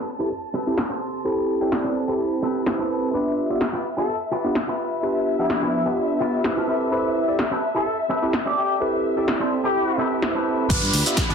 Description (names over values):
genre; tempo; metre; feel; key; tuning
filtered disco house; 127 BPM; 4/4; swing 53% on 16ths; A minor; A4 = 439 Hz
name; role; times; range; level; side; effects
warm symphonic violin section; sustained chords; 0.0-11.3 s; E5 to B5; -30 LUFS; left 4 dB; sidechain pumping, low-pass filter
electric guitar with an envelope filter; riff; 0.0-11.3 s; C4 to D5; -28 LUFS; right 1 dB; spring reverb, sidechain pumping, low-pass filter
tine electric piano; accompaniment; 0.2-11.2 s; F3 to B5; -23 LUFS; right 1 dB; phaser, vintage 12-bit sampler grit, sidechain pumping, low-pass filter
punchy analog drum machine; drums; 0.8-11.3 s; crash cymbal, hi-hat, shaker, snare drum; -25 LUFS; equal; low-pass filter on snare, sidechain pumping on hats, low-pass filter on hats, sidechain pumping on cymbals, low-pass filter on cymbals, sidechain pumping on perc, low-pass filter on perc, low-pass filter on room
mellow trumpet section; melody; 4.0-10.1 s; E4 to A4; -28 LUFS; left 3 dB; vintage 12-bit sampler grit, sidechain pumping, low-pass filter, tape echo
fingered electric bass; bass; 10.7-11.3 s; G1 to G2; -25 LUFS; equal; tube saturation, sidechain pumping, low-pass filter
electronic kick drum; drums; 10.7-11.3 s; none; -24 LUFS; equal; none
downlifter; sound effects; 10.7-11.3 s; none; -25 LUFS; equal; none
room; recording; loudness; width
moderate plate reverb, RT60 1.0 s, digital ambience; dense, heavily limited modern master; -20 LUFS; side -6 dB against mid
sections
0.0-10.7 A section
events
filter sweep 0.0-10.7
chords
0.0 Am9; 3.1 G7; 6.7 Am9; 10.7 G7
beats
0.31 0.78 | 1.25 1.72 2.19 2.67 | 3.14 3.61 4.08 4.56 | 5.03 5.50 5.97 6.45 | 6.92 7.39 7.87 8.34 | 8.81 9.28 9.75 10.23 | 10.70 11.17